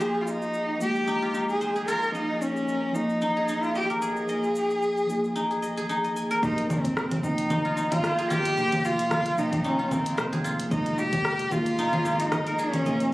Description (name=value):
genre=organic downtempo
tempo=112 BPM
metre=4/4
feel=swing 55% on 16ths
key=F minor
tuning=A4 = 437 Hz
part: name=dark cello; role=melody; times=0.0-13.1 s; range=C4 to Bb4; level=-26 LUFS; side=equal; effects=digital delay
part: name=muted felt-like synth keys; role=accompaniment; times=0.0-13.1 s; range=F3 to G5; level=-31 LUFS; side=equal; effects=chorus, sidechain pumping
part: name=guzheng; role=arpeggios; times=0.0-13.1 s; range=Eb4 to Ab5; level=-31 LUFS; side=left 1 dB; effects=ping-pong delay
part: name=deep house drum kit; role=drums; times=0.0-13.1 s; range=congas, hi-hat, rim click, shaker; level=-31 LUFS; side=equal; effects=none
part: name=round analog bass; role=bass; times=6.4-13.1 s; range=F1 to Ab1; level=-35 LUFS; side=equal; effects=sidechain pumping
part: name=electronic kick drum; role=drums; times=6.4-11.6 s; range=none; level=-34 LUFS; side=equal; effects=none
room=moderate lush hall reverb, RT60 1.6 s, digital ambience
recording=recorded on a phone in the room, club ambience, compression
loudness=-24 LUFS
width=side -18 dB against mid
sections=0.0-6.4 A section; 6.4-13.1 B section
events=none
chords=0.0 Fm7; 10.7 Ebsus4/F